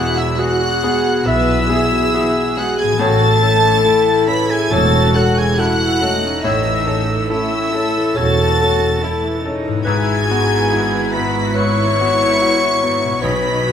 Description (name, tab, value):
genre	cinematic, emotional film score for orchestra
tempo	70 BPM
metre	4/4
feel	rubato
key	E major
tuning	A4 = 440 Hz
part	rich studio violin section	melody	0.0-13.7 s	E6 to C#7	-23 LUFS	left 1 dB	none
part	clear oboe	second line	0.0-13.7 s	E5 to C#6	-23 LUFS	right 1 dB	none
part	rich studio violin section	second line	0.0-13.7 s	E5 to C#6	-25 LUFS	right 2 dB	none
part	bright grand piano	accompaniment	0.0-13.7 s	B1 to A4	-22 LUFS	left 3 dB	none
part	warm studio viola section	accompaniment	0.0-13.7 s	C#3 to D#5	-25 LUFS	right 4 dB	none
part	clear French horn section	sustained chords	0.0-13.7 s	E3 to C#5	-20 LUFS	left 5 dB	none
part	dark studio double bass section	bass	0.0-13.7 s	E1 to B1	-21 LUFS	right 3 dB	none
part	warm studio cello section	bass	0.0-13.7 s	C#4 to B4	-24 LUFS	right 2 dB	none
part	dark clarinet	second line	1.3-13.5 s	B4 to E5	-25 LUFS	equal	none
part	small flute group	second line	1.3-13.6 s	D#6 to F#6	-27 LUFS	left 5 dB	none
part	concert harp	arpeggios	2.8-13.7 s	G#2 to D#5	-27 LUFS	left 7 dB	none
part	timpani	percussion	13.2-13.7 s	B2	-27 LUFS	equal	none
room	moderate recital hall reverb, RT60 1.6 s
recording	none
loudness	-13 LUFS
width	side -8 dB against mid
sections	0.0-13.7 A section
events	none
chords	0.0 Eadd9; 3.0 A; 9.8 Eadd9/G#; 13.2 Badd9